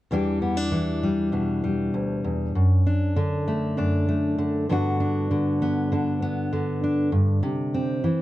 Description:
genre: folk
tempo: 98 BPM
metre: 4/4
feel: straight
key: unclear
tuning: A4 = 441 Hz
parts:
  - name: fingerpicked steel-string acoustic guitar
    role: accompaniment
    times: 0.1-8.2 s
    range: D2 to G4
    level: -21 LUFS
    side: equal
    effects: none
room: light reverb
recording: dark, warm production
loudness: -22 LUFS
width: side -15 dB against mid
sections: 0.1-8.2 A section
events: none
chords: 0.1 Em7; 2.5 D/F#; 4.7 Gmaj7; 7.4 C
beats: | 0.11 0.72 1.33 1.94 | 2.55 3.16 3.77 4.38 | 4.99 5.60 6.21 6.82 | 7.43 8.04

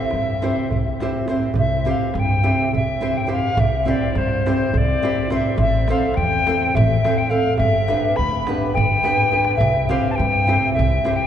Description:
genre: balkan folk, Balkan wedding band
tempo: 209 BPM (eighths)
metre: 7/8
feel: straight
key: C major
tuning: A4 = 442 Hz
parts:
  - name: mellow alto recorder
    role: melody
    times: 0.0-11.3 s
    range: C5 to B5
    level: -21 LUFS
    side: left 2 dB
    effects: none
  - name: nylon-string guitar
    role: accompaniment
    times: 0.0-11.3 s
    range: B3 to C5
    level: -23 LUFS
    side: right 1 dB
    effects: none
  - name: upright bass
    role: bass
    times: 0.1-11.0 s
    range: G1 to G2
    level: -22 LUFS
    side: equal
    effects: none
  - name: darbuka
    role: percussion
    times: 0.1-11.2 s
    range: none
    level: -26 LUFS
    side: right 2 dB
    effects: none
room: wet cathedral reverb, RT60 6.4 s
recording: recorded in a church or concert hall, nothing above 10.6 kHz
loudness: -17 LUFS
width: side -9 dB against mid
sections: 0.0-1.6 A section; 1.6-11.3 A section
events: drum fill 9.2-9.6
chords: 0.0 C; 5.6 Am; 7.6 G; 9.6 C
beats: 0.11 0.40 0.69 0.98 1.27 | 1.55 1.84 2.13 2.42 2.71 2.99 3.28 | 3.57 3.86 4.14 4.43 4.72 5.00 5.29 | 5.58 5.87 6.15 6.44 6.73 7.01 7.30 | 7.59 7.88 8.16 8.45 8.74 9.02 9.31 | 9.60 9.89 10.17 10.46 10.75 11.04

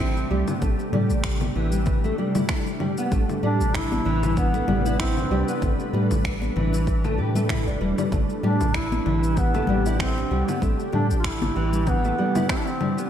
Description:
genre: organic downtempo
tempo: 96 BPM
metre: 4/4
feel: swing 56% on 16ths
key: A minor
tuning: A4 = 436 Hz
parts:
  - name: warm duduk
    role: melody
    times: 0.0-13.0 s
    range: B3 to F4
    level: -28 LUFS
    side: equal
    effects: diffuse ambient delay
  - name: ethereal airy pad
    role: sustained chords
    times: 0.0-13.1 s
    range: C3 to B4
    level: -30 LUFS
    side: equal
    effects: ensemble chorus, built-in reverb, sidechain pumping
  - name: nylon-string guitar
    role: arpeggios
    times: 0.0-13.1 s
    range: E3 to G4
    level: -27 LUFS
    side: equal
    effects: ensemble chorus, diffuse ambient delay
  - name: round analog bass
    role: bass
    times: 0.0-12.1 s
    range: E1 to A2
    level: -25 LUFS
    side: equal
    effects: sidechain pumping
  - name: electronic shaker, congas and finger snaps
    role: drums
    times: 0.2-13.1 s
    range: none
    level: -31 LUFS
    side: left 3 dB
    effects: overdrive, studio reverb
  - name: electronic kick drum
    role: drums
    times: 0.6-12.6 s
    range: none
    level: -27 LUFS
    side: equal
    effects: overdrive, studio reverb
  - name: congas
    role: percussion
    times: 0.6-12.5 s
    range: none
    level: -33 LUFS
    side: left 3 dB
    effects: none
room: moderate lush hall reverb, RT60 2.2 s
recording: dreamy mix soaked in reverb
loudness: -20 LUFS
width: side -9 dB against mid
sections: 0.0-13.1 A section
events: none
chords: 0.0 Am9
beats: 0.00 | 0.62 1.25 1.87 2.50 | 3.12 3.75 4.37 5.00 | 5.62 6.25 6.87 7.50 | 8.12 8.74 9.37 9.99 | 10.62 11.24 11.87 12.49

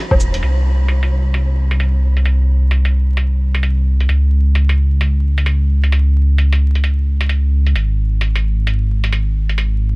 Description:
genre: future garage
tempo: 131 BPM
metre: 4/4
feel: swing 62% on 16ths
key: unclear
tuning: A4 = 440 Hz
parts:
  - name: dark detuned saw bass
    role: bass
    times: 0.1-10.0 s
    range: Eb1 to Db2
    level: -13 LUFS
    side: equal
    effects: sidechain pumping
  - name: electronic woodblock, cabasa and hi-hat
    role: drums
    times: 0.1-9.7 s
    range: none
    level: -22 LUFS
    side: equal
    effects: overdrive, low-pass filter on perc, low-pass filter on hats, low-pass filter on snare
room: digital ambience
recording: vinyl crackle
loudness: -13 LUFS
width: side -28 dB against mid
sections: 0.4-10.0 A section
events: band accent 0.0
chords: none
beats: | 0.43 0.89 1.34 1.80 | 2.26 2.72 3.18 3.63 | 4.09 4.55 5.01 5.47 | 5.92 6.38 6.84 7.30 | 7.76 8.21 8.67 9.13 | 9.59

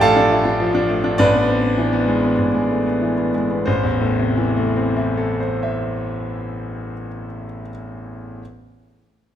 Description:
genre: classical, virtuoso piano study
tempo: 91-104 BPM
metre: 4/4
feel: rubato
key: A minor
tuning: A4 = 441 Hz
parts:
  - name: clear grand piano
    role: solo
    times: 0.0-8.4 s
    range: A1 to A5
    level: -17 LUFS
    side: equal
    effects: none
room: moderate recital hall reverb, RT60 1.6 s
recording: close, detailed microphones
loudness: -17 LUFS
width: side -10 dB against mid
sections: 0.0-3.7 A section; 3.7-6.2 B section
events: slowing down 0.0-3.7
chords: 0.0 Dm/A; 1.2 E7/A; 3.7 Am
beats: 0.03 0.61 | 1.19 1.78 2.39 3.02 | 3.67 4.31 4.94 5.59

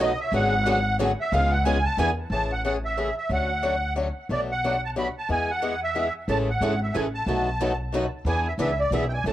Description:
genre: acoustic string swing (jazz manouche)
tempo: 182 BPM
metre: 3/4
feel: swing 60% on 8ths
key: A major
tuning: A4 = 439 Hz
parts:
  - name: musette accordion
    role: melody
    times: 0.0-9.3 s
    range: D5 to B5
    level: -26 LUFS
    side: right 1 dB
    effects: tape echo
  - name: picked steel-string acoustic guitar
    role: accompaniment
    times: 0.0-2.1, 6.3-9.3 s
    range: B2 to B4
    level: -30 LUFS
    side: right 4 dB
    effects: none
  - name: picked swing-style acoustic guitar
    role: accompaniment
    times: 0.0-9.3 s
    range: B2 to A4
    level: -28 LUFS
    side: left 3 dB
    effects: none
  - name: upright bass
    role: bass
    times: 0.0-9.3 s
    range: G#1 to E2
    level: -28 LUFS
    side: equal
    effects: none
room: moderate club reverb, RT60 0.5 s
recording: worn, warbling old tape, cassette tape, warbly pitch drift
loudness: -22 LUFS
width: side -13 dB against mid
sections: 0.0-2.3 A section; 2.3-9.3 B section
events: accordion solo 0.0-2.3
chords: 0.3 G#m7b5; 1.3 C#7; 2.0 E7; 2.3 Amaj7; 3.3 Dmaj7; 4.3 Bm7; 5.3 E; 6.3 Amaj7; 7.3 B7; 8.3 E7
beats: 0.00 | 0.33 0.66 0.99 | 1.32 1.65 1.98 | 2.31 2.64 2.97 | 3.30 3.63 3.97 | 4.30 4.63 4.96 | 5.29 5.62 5.95 | 6.28 6.61 6.94 | 7.27 7.60 7.93 | 8.26 8.59 8.92 | 9.25

